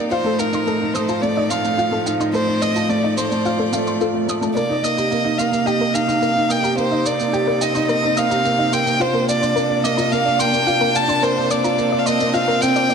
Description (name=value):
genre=piano and strings electronica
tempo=108 BPM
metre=4/4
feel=straight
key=C dorian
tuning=A4 = 440 Hz
part: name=clear string quartet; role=sustained chords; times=0.0-12.9 s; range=A2 to D5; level=-25 LUFS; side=equal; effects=low-pass filter
part: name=clear upright piano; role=riff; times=0.0-12.9 s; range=A3 to G4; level=-21 LUFS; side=right 2 dB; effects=digital delay
part: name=warm violin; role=melody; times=0.1-12.9 s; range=Bb4 to A5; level=-20 LUFS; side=equal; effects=digital delay
part: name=soft round pluck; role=arpeggios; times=0.1-12.9 s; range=A4 to Eb6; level=-27 LUFS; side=left 4 dB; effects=chorus, digital delay
part: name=shaker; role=drums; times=0.1-12.9 s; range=none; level=-30 LUFS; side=right 3 dB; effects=high-pass filter on perc, high-pass filter on room
room=moderate lush hall reverb, RT60 1.9 s, small room ambience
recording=none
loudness=-16 LUFS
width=side -6 dB against mid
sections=0.0-4.6 A section; 4.6-12.9 B section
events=build-up 4.6-12.9; filter sweep on string quartet 4.6-12.9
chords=0.1 F7; 4.6 Cm7; 9.0 Bbadd9